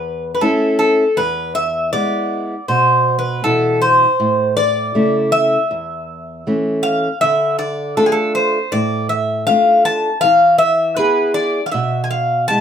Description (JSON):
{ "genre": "greek folk, Greek bouzouki band", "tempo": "80 BPM", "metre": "4/4", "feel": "straight", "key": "unclear", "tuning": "A4 = 437 Hz", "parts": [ { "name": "Greek bouzouki", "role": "melody", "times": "0.0-12.6 s", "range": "G#4 to A5", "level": "-15 LUFS", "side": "left 1 dB", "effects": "none" }, { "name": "fingerpicked steel-string acoustic guitar", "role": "accompaniment", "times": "0.0-12.6 s", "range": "E2 to G#4", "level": "-19 LUFS", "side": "right 1 dB", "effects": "none" } ], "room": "wet studio reverb, RT60 0.5 s", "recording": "none", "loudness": "-14 LUFS", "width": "side -8 dB against mid", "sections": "0.0-12.6 A section", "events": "none", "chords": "0.0 A; 1.2 E; 4.2 A; 7.2 Dm; 10.2 E" }